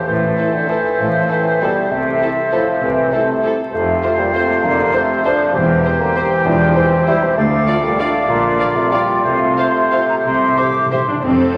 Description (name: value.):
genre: classical, orchestral ballroom waltz.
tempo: 170-213 BPM.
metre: 3/4.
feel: rubato.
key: F major from 3.7 s.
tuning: A4 = 440 Hz.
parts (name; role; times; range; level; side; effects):
warm clarinet; second line; 0.0-11.0 s; F4 to A4; -27 LUFS; equal; none.
warm oboe; second line; 0.0-11.0 s; C5 to D5; -24 LUFS; equal; none.
mellow bassoon; accompaniment; 0.0-11.0 s; D3 to E4; -22 LUFS; equal; none.
mellow French horn section; sustained chords; 0.0-11.6 s; F2 to D4; -25 LUFS; equal; none.
silver concert flute; second line; 0.1-11.2 s; E5 to D6; -25 LUFS; equal; none.
muted studio cello section; bass; 0.1-11.5 s; D2 to C3; -26 LUFS; equal; none.
muted studio double bass section; bass; 0.1-11.5 s; E1 to D2; -26 LUFS; equal; none.
muted studio violin section; melody; 0.4-11.6 s; A4 to F5; -33 LUFS; equal; none.
muted studio violin section; second line; 0.4-11.0 s; A4 to D5; -30 LUFS; equal; none.
muted studio viola section; accompaniment; 0.4-11.6 s; C4 to G4; -28 LUFS; equal; none.
timpani; percussion; 10.3-11.6 s; F2 to C3; -29 LUFS; equal; none.
room: wet scoring stage reverb, RT60 1.9 s.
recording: vinyl crackle.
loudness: -16 LUFS.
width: mono.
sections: 0.0-11.2 A section.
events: timpani fill 10.2-11.2.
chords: 0.1 Am; 1.9 Am/C; 3.7 F; 5.5 C/E; 7.4 Dm; 8.3 Bb; 9.2 F/C; 10.2 C5.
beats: | 0.07 0.37 0.69 | 0.99 1.29 1.61 | 1.91 2.21 2.53 | 2.83 3.13 3.44 | 3.73 4.04 4.35 | 4.64 4.94 5.25 | 5.55 5.84 6.16 | 6.46 6.76 7.08 | 7.37 7.67 7.99 | 8.28 8.59 8.91 | 9.24 9.57 9.92 | 10.25 10.57 10.91 | 11.24 11.57.